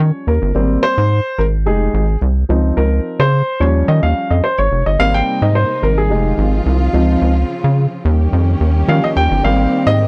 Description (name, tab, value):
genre	funk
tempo	108 BPM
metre	4/4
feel	straight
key	Ab major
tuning	A4 = 441 Hz
part	warm grand piano	accompaniment	0.0-10.1 s	F3 to G5	-19 LUFS	equal	none
part	rubbery square bass	bass	0.0-10.1 s	F1 to Eb3	-16 LUFS	equal	none
part	warm studio string section	sustained chords	5.0-10.1 s	C3 to G4	-24 LUFS	equal	none
room	little or no reverb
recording	dry, close 1970s-style studio recording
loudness	-15 LUFS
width	mono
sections	0.0-10.1 A section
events	grand piano solo 0.0-10.1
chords	0.0 Eb7; 0.6 Abmaj9; 1.7 Fm7; 2.5 Dbmaj7; 3.6 Eb7; 5.0 Abmaj9; 6.1 Fm7; 6.9 Dbmaj7; 8.1 Eb7; 9.4 Abmaj9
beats	0.00 | 0.55 1.11 1.66 2.22 | 2.77 3.33 3.88 4.44 | 5.00 5.55 6.11 6.66 | 7.22 7.77 8.33 8.88 | 9.44 9.99